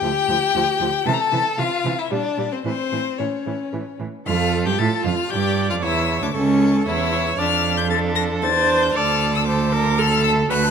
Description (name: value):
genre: quick classical-period movement for string quartet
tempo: 115 BPM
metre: 3/4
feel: straight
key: D minor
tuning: A4 = 441 Hz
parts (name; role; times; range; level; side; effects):
- rich violin; melody; 0.0-10.7 s; C5 to Bb6; -23 LUFS; left 9 dB; none
- clear violin; second line; 0.0-10.7 s; C4 to A4; -24 LUFS; left 3 dB; none
- clear viola; accompaniment; 0.0-10.7 s; E3 to D5; -25 LUFS; right 3 dB; none
- clear cello; bass; 0.0-10.7 s; C#2 to C3; -23 LUFS; right 5 dB; none
room: light reverb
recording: close, detailed microphones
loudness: -18 LUFS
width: side -7 dB against mid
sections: 0.0-4.3 A section; 4.3-10.7 B section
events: none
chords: 0.0 Dm; 1.1 Am/C; 2.1 Gm; 2.6 A; 4.3 Dm/F; 5.8 A; 7.4 Dm/F; 8.9 D5